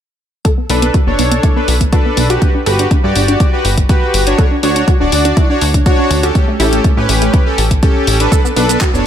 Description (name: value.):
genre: progressive house.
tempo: 122 BPM.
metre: 4/4.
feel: straight.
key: B minor.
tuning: A4 = 440 Hz.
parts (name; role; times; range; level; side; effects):
wide unison pluck; arpeggios; 0.4-9.0 s; A3 to A4; -19 LUFS; right 1 dB; sidechain pumping, tape echo.
deep house drum kit; drums; 0.5-9.0 s; handclaps, hi-hat, shaker; -19 LUFS; left 2 dB; none.
electronic kick drum; drums; 0.5-8.9 s; none; -12 LUFS; equal; none.
soft supersaw; stabs; 0.7-9.1 s; C#4 to D5; -15 LUFS; equal; sidechain pumping, tape echo.
plucky analog bass; bass; 0.7-9.0 s; D1 to A2; -16 LUFS; equal; tube saturation, sidechain pumping.
room: digital ambience.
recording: none.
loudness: -10 LUFS.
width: side -9 dB against mid.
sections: 0.5-9.1 A section.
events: filter sweep on synth pluck 0.5-9.1.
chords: 0.5 Bm7; 2.4 Gmaj7; 4.4 Dmaj7; 6.4 A7; 8.3 Bm7.